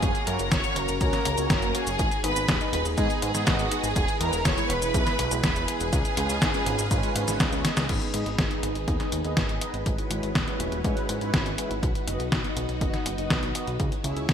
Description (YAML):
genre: italo disco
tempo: 122 BPM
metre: 4/4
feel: straight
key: G# minor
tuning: A4 = 440 Hz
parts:
  - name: warm symphonic violin section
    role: melody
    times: 0.0-7.7 s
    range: F#4 to C#6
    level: -29 LUFS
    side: right 1 dB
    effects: ping-pong delay, shimmer reverb
  - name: string machine, full ensemble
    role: sustained chords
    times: 0.0-14.3 s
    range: G#3 to E#5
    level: -33 LUFS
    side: equal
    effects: ensemble chorus, shimmer reverb
  - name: mellow synth brass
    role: stabs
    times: 0.0-14.2 s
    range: G#3 to E5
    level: -32 LUFS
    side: right 1 dB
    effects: chorus, shimmer reverb
  - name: fat analog bass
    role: bass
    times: 0.0-14.3 s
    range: D#1 to G#2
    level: -31 LUFS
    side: equal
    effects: none
  - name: detuned 8-bit digital drum machine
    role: drums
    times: 0.0-14.3 s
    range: cabasa, crash cymbal, hi-hat, snare drum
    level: -28 LUFS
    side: equal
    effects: gated reverb
  - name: electronic kick drum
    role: drums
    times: 0.0-14.3 s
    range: none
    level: -29 LUFS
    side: equal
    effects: none
room: moderate lush hall reverb, RT60 2.0 s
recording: bright 1980s-style digital production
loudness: -23 LUFS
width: side -8 dB against mid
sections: 0.0-7.9 A section; 7.9-14.3 B section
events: drum fill 7.6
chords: 0.0 F#; 2.0 G#m; 4.0 E; 5.9 C#7; 7.9 G#m; 9.9 E6; 11.8 B; 13.8 C#m